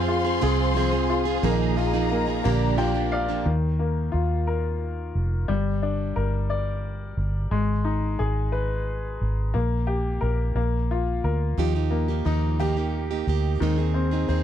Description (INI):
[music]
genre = six-eight pop ballad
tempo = 59 BPM (dotted quarters)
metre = 6/8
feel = straight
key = Eb major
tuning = A4 = 441 Hz
[part]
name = bright upright piano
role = accompaniment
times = 0.0-14.4 s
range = Eb3 to G5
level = -27 LUFS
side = left 6 dB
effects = none
[part]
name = warm studio string section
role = sustained chords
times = 0.0-3.5 s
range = G4 to C6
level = -29 LUFS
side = left 1 dB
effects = none
[part]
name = picked plugged-in steel-string acoustic guitar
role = arpeggios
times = 0.0-3.5, 11.6-14.4 s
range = Bb2 to Ab4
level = -27 LUFS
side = right 13 dB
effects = none
[part]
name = vintage muted fingered electric bass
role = bass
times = 0.0-14.4 s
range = F1 to F2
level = -25 LUFS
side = equal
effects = none
[sound]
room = little or no reverb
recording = dry, close 1970s-style studio recording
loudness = -22 LUFS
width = side -10 dB against mid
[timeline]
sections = 0.0-3.5 A section; 3.5-14.4 B section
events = upright piano fill 2.5-3.5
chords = 0.0 Fm; 1.4 Bb7sus4; 2.5 Bb6; 3.5 Ebsus2; 5.5 Gm; 7.5 Abm; 9.6 Gm/Bb; 10.6 Bb; 11.6 Ebadd9; 13.6 Ab/Eb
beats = 0.43 | 1.44 2.45 | 3.47 4.48 | 5.50 6.51 | 7.53 8.54 | 9.55 10.57 | 11.58 12.60 | 13.61